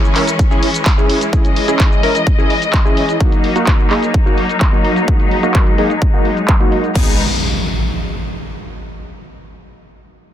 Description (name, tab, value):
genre	EDM, festival progressive house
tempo	128 BPM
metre	4/4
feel	straight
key	unclear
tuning	A4 = 439 Hz
part	bright symphonic string section	sustained chords	0.0-7.2 s	E3 to D#5	-20 LUFS	left 2 dB	sidechain pumping, low-pass filter
part	supersaw stab	riff	0.0-7.1 s	A#3 to A#4	-19 LUFS	equal	sidechain pumping, low-pass filter, tape echo
part	big-room dance drum kit	drums	0.0-7.0 s	cabasa, crash cymbal, handclaps, hi-hat	-22 LUFS	equal	low-pass filter on hats, low-pass filter on perc, low-pass filter on snare, low-pass filter on cymbals
part	electronic kick drum	drums	0.4-7.0 s	none	-13 LUFS	equal	none
part	wide detuned saw bass	bass	7.0-7.2 s	none	barely audible	none	none
part	impact	sound effects	7.0-8.8 s	none	-21 LUFS	equal	none
room	digital ambience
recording	dense, heavily limited modern master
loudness	-12 LUFS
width	side -11 dB against mid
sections	0.0-7.0 A section; 7.0-8.8 B section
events	filter sweep on drum 0.0-7.0; filter sweep on supersaw synth 0.0-7.0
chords	0.0 C#m; 3.2 D#m; 7.0 G#m